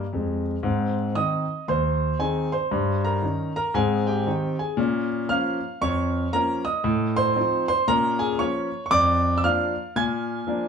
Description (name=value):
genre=jazz, stride piano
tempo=116 BPM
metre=4/4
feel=swing 62% on 8ths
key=Ab major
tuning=A4 = 441 Hz
part: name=clear grand piano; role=solo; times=0.0-10.7 s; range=Eb2 to Ab6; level=-21 LUFS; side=equal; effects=none
room=wet small room reverb, RT60 0.5 s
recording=heard from further back in the room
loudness=-21 LUFS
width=side -6 dB against mid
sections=0.6-10.7 A section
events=none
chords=0.0 Eb; 0.6 Ab; 2.7 Eb7/G; 3.7 Ab; 4.8 Bbm; 6.8 F7/A; 7.9 Bbm; 8.9 Bb7/F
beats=0.13 | 0.65 1.16 1.68 2.20 | 2.71 3.23 3.75 4.26 | 4.78 5.30 5.81 6.33 | 6.85 7.36 7.88 8.40 | 8.91 9.43 9.94 10.46